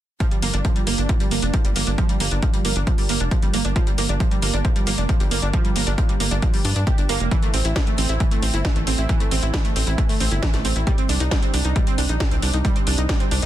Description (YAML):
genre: uplifting trance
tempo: 135 BPM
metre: 4/4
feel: straight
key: G minor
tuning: A4 = 440 Hz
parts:
  - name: analog pluck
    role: arpeggios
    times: 0.2-13.5 s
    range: E3 to G4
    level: -25 LUFS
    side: right 3 dB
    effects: chorus, sidechain pumping, ping-pong delay
  - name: electronic kick drum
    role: drums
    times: 0.2-13.2 s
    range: none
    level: -21 LUFS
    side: equal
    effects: none
  - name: techno drum kit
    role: drums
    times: 0.2-13.5 s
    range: hi-hat, snare drum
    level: -27 LUFS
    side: left 1 dB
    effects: none
  - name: tight sequencer bass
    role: bass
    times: 0.4-13.5 s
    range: F1 to G2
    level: -22 LUFS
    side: equal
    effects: tube saturation, sidechain pumping
room: little or no reverb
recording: dense, heavily limited modern master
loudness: -18 LUFS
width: side -12 dB against mid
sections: 0.2-13.5 A section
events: none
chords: 0.2 G7(no3); 7.3 A5; 10.9 N.C.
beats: | 0.20 0.65 1.09 1.54 | 1.98 2.42 2.87 3.31 | 3.76 4.20 4.65 5.09 | 5.54 5.98 6.42 6.87 | 7.31 7.76 8.20 8.65 | 9.09 9.54 9.98 10.43 | 10.87 11.31 11.76 12.20 | 12.65 13.09